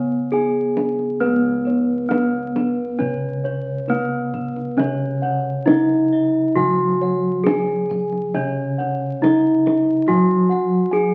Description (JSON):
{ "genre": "Javanese gamelan", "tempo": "67 BPM", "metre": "4/4", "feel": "straight", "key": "C# slendro", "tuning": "A4 = 437 Hz", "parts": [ { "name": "gamelan-type bronze metallophone", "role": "melody", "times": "0.0-11.1 s", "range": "B3-25c to G#4", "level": "-22 LUFS", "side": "equal", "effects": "none" }, { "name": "gamelan-type bronze metallophone", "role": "accompaniment", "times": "0.0-11.1 s", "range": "C#3 to B3-25c", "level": "-27 LUFS", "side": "equal", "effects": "none" }, { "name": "gamelan-type bossed gongs", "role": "arpeggios", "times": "0.0-11.1 s", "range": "B4-25c to G#5", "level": "-32 LUFS", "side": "equal", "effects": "none" }, { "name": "gamelan-type bossed gongs", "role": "bass", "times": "0.0-11.1 s", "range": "C#2 to B4-25c", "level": "-30 LUFS", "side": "equal", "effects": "none" }, { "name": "kendang", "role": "percussion", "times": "0.3-11.0 s", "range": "none", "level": "-27 LUFS", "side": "equal", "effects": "none" }, { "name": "gamelan-type bronze metallophone", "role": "arpeggios", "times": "1.2-11.1 s", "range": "B4-25c to G#5", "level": "-33 LUFS", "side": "equal", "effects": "none" } ], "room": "wet large studio reverb, RT60 1.1 s", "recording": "very old 78 rpm record, vinyl crackle", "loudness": "-19 LUFS", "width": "mono", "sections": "0.0-1.2 A section; 1.2-11.1 B section", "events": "none", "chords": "none", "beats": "0.32 | 1.21 2.10 2.99 3.88 | 4.77 5.67 6.56 7.45 | 8.34 9.22 10.08 10.92" }